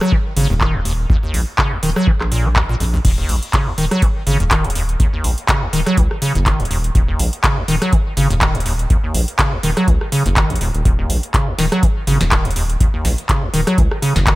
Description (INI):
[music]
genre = acid house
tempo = 123 BPM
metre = 4/4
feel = swing 55% on 16ths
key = Eb minor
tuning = A4 = 440 Hz
[part]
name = acid bass, square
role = riff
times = 0.0-14.4 s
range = Db2 to Gb3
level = -20 LUFS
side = equal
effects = overdrive, lush chorus, dub echo
[part]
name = booming analog drum machine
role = drums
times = 0.0-14.4 s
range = crash cymbal, handclaps, hi-hat, rim click, snare drum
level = -21 LUFS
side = equal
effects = none
[part]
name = electronic kick drum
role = drums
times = 0.1-14.4 s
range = none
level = -16 LUFS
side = equal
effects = none
[part]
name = round analog bass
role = bass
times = 0.4-14.3 s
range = Eb1 to Db2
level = -19 LUFS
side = equal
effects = tube saturation, sidechain pumping
[sound]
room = little or no reverb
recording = echo-heavy mix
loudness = -14 LUFS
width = side -19 dB against mid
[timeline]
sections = 0.0-14.4 A section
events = none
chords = 0.0 Ebm7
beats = 0.12 0.61 | 1.10 1.58 2.07 2.56 | 3.05 3.54 4.02 4.51 | 5.00 5.49 5.97 6.46 | 6.95 7.44 7.93 8.41 | 8.90 9.39 9.88 10.37 | 10.85 11.34 11.83 12.32 | 12.80 13.29 13.78 14.27